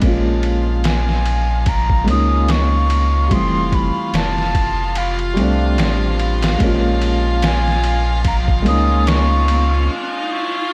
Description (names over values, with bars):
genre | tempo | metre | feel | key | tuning
trip hop | 73 BPM | 4/4 | swing 56% on 16ths | unclear | A4 = 441 Hz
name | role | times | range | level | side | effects
felt-muted upright piano | accompaniment | 0.0-9.9 s | E3 to F4 | -24 LUFS | equal | harmonic tremolo, vintage 12-bit sampler grit, tape echo
warm studio violin section | sustained chords | 0.0-10.7 s | F4 to F5 | -28 LUFS | equal | none
round analog bass | bass | 0.0-9.9 s | F1 to Db2 | -20 LUFS | equal | none
trip hop sampler-style drum kit | drums | 0.0-9.7 s | kick drum, ride cymbal, snare drum | -24 LUFS | equal | overdrive, analog delay
wooden flute | melody | 0.9-9.9 s | F5 to Eb6 | -25 LUFS | equal | tape echo
riser | sound effects | 8.4-10.7 s | none | -30 LUFS | equal | none
room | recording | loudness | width
studio reverb | echo-heavy mix, vinyl crackle | -17 LUFS | mono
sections
0.0-10.7 A section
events
riser 8.4-10.7; break 9.9-10.7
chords
0.0 Bbm7; 3.3 Fmaj7; 6.6 Bbm7; 9.9 N.C.